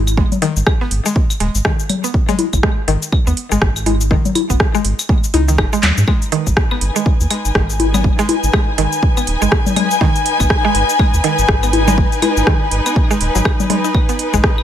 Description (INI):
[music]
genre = minimal techno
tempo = 122 BPM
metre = 4/4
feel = swing 59% on 16ths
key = G# minor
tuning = A4 = 438 Hz
[part]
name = rubbery square bass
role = bass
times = 0.0-14.4 s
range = D#1 to G#2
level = -17 LUFS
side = equal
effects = sidechain pumping
[part]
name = house drum kit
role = drums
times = 0.1-14.6 s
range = handclaps, hi-hat, rim click, shaker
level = -20 LUFS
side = equal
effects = studio reverb
[part]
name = claves and congas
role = percussion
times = 0.1-14.6 s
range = none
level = -20 LUFS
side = left 5 dB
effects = studio reverb, tape echo
[part]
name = mallet-like synth pluck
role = riff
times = 0.2-14.4 s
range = D#3 to D#4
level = -21 LUFS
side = right 1 dB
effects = chorus, sidechain pumping, digital delay
[part]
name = electronic kick drum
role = drums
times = 0.2-14.6 s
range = none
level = -16 LUFS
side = equal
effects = studio reverb
[part]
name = warm studio string section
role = texture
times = 6.1-14.6 s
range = D#4 to G#5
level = -19 LUFS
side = left 2 dB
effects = sidechain pumping
[sound]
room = light reverb, digital ambience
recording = none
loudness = -13 LUFS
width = side -10 dB against mid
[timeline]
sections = 0.0-6.1 A section; 6.1-14.6 A section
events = drop 0.0-6.1, 6.1-14.6; drum fill 5.8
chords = 0.0 N.C.; 6.1 G#m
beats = | 0.17 0.67 1.16 1.65 | 2.14 2.63 3.12 3.62 | 4.11 4.60 5.09 5.58 | 6.08 6.57 7.06 7.55 | 8.04 8.54 9.03 9.52 | 10.01 10.50 10.99 11.48 | 11.98 12.47 12.96 13.45 | 13.94 14.44